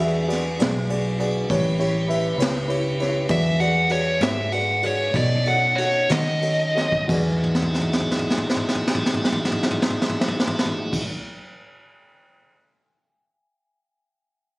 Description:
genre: slow blues.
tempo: 60-67 BPM (dotted quarters).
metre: 12/8.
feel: straight.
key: E mixolydian.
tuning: A4 = 441 Hz.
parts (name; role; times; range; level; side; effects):
dark concert grand piano; accompaniment; 0.0-11.0 s; E4 to F#5; -26 LUFS; equal; none.
tonewheel organ; sustained chords; 0.0-11.1 s; A3 to B4; -29 LUFS; equal; slow rotary speaker.
vintage muted fingered electric bass; bass; 0.0-11.0 s; A1 to D#3; -24 LUFS; equal; none.
jazz brush drum kit; drums; 0.0-12.6 s; crash cymbal, kick drum, ride cymbal, snare drum, toms; -25 LUFS; equal; none.
dark smooth lead guitar; melody; 3.3-7.1 s; C#5 to F#5; -21 LUFS; equal; overdrive.
room: light reverb.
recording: recorded on a phone in the room, studio reverb, compression.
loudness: -19 LUFS.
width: side -24 dB against mid.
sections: 0.0-7.1 A section; 7.1-11.1 B section.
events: lead electric guitar solo 0.0-7.1; slowing down 2.1-7.1; drum fill 6.7-7.1, 7.4-10.9.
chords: 0.0 E9; 1.5 A9; 3.3 E9; 5.1 B9; 7.1 E9.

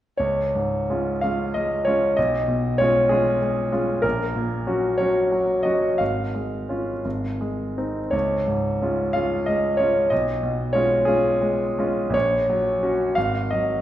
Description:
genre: classical, romantic character piece for solo piano.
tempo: 54-66 BPM (dotted quarters).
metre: 6/8.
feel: rubato.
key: Db major.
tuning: A4 = 439 Hz.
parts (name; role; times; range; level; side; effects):
clear concert grand piano; solo; 0.2-13.8 s; Ab1 to F5; -20 LUFS; equal; none.
room: wet recital hall reverb, RT60 1.4 s.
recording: heard from further back in the room.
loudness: -20 LUFS.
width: side -12 dB against mid.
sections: 0.2-13.8 A section.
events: none.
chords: 0.2 Db; 2.2 Db7/Cb; 4.0 Gb/Bb; 6.0 Db/Ab; 7.0 Ab; 8.1 Db; 10.1 Db7/Cb; 12.1 Gb/Bb; 13.2 Ab7(no3).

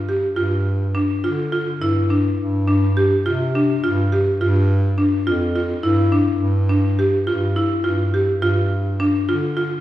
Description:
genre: contemporary instrumental, chamber music in an uneven meter.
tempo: 209 BPM (eighths).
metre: 7/8.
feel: straight.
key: unclear.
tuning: A4 = 440 Hz.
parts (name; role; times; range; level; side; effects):
buzzing marimba with medium hard mallets; arpeggios; 0.0-9.8 s; D4 to G4; -19 LUFS; left 1 dB; none.
mellow bass clarinet; bass; 0.0-9.8 s; F2 to D3; -20 LUFS; right 1 dB; none.
room: wet recital hall reverb, RT60 1.6 s.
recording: recorded in a church or concert hall.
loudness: -17 LUFS.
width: side -13 dB against mid.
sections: 0.4-9.8 A section.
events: none.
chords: 0.4 G5; 2.4 F5/G; 4.4 Dmadd11; 6.4 G5.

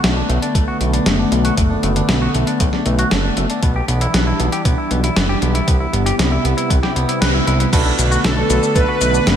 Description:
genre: synthwave.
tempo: 117 BPM.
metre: 4/4.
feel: straight.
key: B phrygian.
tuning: A4 = 440 Hz.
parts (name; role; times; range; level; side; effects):
chorused pulse-width pad; sustained chords; 0.0-9.4 s; C3 to E4; -21 LUFS; equal; sidechain pumping.
clean electric guitar; arpeggios; 0.0-9.4 s; A3 to B4; -23 LUFS; left 1 dB; tape echo, slapback echo.
fat analog bass; bass; 0.0-9.4 s; F#1 to C2; -19 LUFS; equal; none.
clean 12-bit digital drum machine; drums; 0.0-9.4 s; crash cymbal, hi-hat, shaker, snare drum; -20 LUFS; equal; none.
electronic kick drum; drums; 0.5-8.9 s; none; -17 LUFS; equal; none.
bright electric grand piano; stabs; 7.7-9.4 s; D4 to B4; -23 LUFS; right 3 dB; slapback echo.
soft supersaw; melody; 8.2-9.4 s; A4 to B4; -18 LUFS; right 1 dB; ping-pong delay.
FM electric piano with soft pad layer; second line; 8.2-9.4 s; A4 to B4; -29 LUFS; right 4 dB; none.
room: moderate concert hall reverb, RT60 2.0 s.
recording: big arena sound.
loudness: -14 LUFS.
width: side -9 dB against mid.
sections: 0.0-7.7 A section; 7.7-9.4 B section.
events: filter sweep on clean electric guitar 0.0-7.7; band accent 7.2.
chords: 0.0 Bm7; 3.6 Em7/B; 5.7 Cmaj7; 7.7 Bm7.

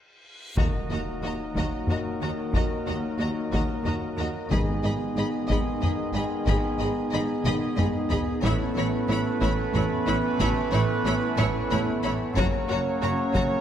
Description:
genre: cinematic, epic orchestral film score.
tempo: 61 BPM (dotted quarters).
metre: 6/8.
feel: straight.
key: unclear.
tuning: A4 = 436 Hz.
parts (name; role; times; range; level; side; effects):
reverse cymbal and impact; sound effects; 0.2-2.5 s; none; -38 LUFS; left 1 dB; none.
rich symphonic violin section; melody; 0.6-13.4 s; A#5 to B5; -37 LUFS; left 4 dB; none.
warm symphonic violin section; second line; 0.6-13.4 s; C#5 to D#5; -36 LUFS; left 3 dB; none.
rich symphonic viola section; accompaniment; 0.6-13.4 s; E4 to G#4; -36 LUFS; left 1 dB; none.
clear trombone section; sustained chords; 0.6-13.6 s; C#3 to A3; -35 LUFS; right 3 dB; none.
dark French horn section; sustained chords; 0.6-13.6 s; A#3 to D#4; -32 LUFS; left 4 dB; none.
pipe organ, flutes; sustained chords; 0.6-13.6 s; A#3 to D#5; -32 LUFS; right 1 dB; none.
dark trumpet section; stabs; 0.6-13.6 s; G#4 to C#5; -34 LUFS; right 3 dB; none.
rich symphonic cello section; bass; 0.6-13.4 s; D#2 to A2; -32 LUFS; right 2 dB; none.
rich symphonic double bass section; bass; 0.6-13.4 s; F#1 to D#2; -32 LUFS; right 2 dB; none.
taiko ensemble; drums; 0.6-13.6 s; none; -29 LUFS; left 1 dB; none.
timpani; percussion; 4.5-5.4 s; G#2; -34 LUFS; equal; none.
room: wet scoring stage reverb, RT60 1.7 s.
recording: none.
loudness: -23 LUFS.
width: side -10 dB against mid.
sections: 0.6-13.6 A section.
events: break 0.0-0.6; reverse cymbal 0.2-0.6; impact 0.6-2.5; drum fill 7.5-8.4.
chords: 0.0 N.C.; 0.6 D#m; 4.5 G#m; 8.4 Aadd9; 12.4 F#.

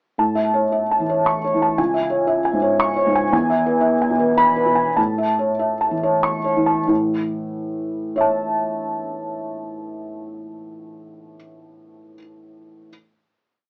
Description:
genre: neoclassical minimalist piano.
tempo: 90-119 BPM.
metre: 3/4.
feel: rubato.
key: A major.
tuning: A4 = 436 Hz.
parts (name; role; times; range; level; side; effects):
felt-muted upright piano; solo; 0.2-12.9 s; C#2 to C#6; -20 LUFS; equal; none.
room: light reverb.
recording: worn, warbling old tape, cassette tape, warbly pitch drift, small speaker sound.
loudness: -20 LUFS.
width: mono.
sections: 0.2-6.9 A section; 6.9-10.7 final chord.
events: slowing down 2.6-6.9.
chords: 0.2 A; 1.8 C#m; 3.3 E; 5.0 A.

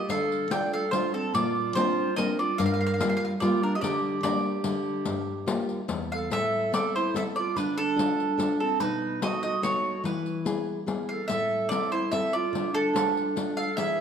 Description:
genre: italian folk, Italian serenade.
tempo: 145 BPM.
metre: 3/4.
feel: straight.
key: G minor, A harmonic minor from 6.3 s.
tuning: A4 = 441 Hz.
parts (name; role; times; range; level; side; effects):
mandolin; melody; 0.0-14.0 s; A4 to G5; -28 LUFS; right 2 dB; none.
warm clarinet; second line; 0.0-14.0 s; C4 to D5; -30 LUFS; right 3 dB; none.
nylon-string guitar; accompaniment; 0.1-14.0 s; E2 to A4; -31 LUFS; left 3 dB; none.
riq; percussion; 0.1-14.0 s; none; -32 LUFS; left 4 dB; none.
room: wet recital hall reverb, RT60 1.5 s.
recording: none.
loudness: -24 LUFS.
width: side -8 dB against mid.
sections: 0.0-6.3 A section; 6.3-14.0 B section.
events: none.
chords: 0.1 Dm; 1.3 Bbadd9; 2.6 Gm7; 3.8 Gm/D; 4.6 N.C.; 5.1 Gm7; 5.9 N.C.; 6.3 Amadd9; 7.6 Dm; 8.8 B7; 10.0 E; 11.3 Am; 12.5 Dm.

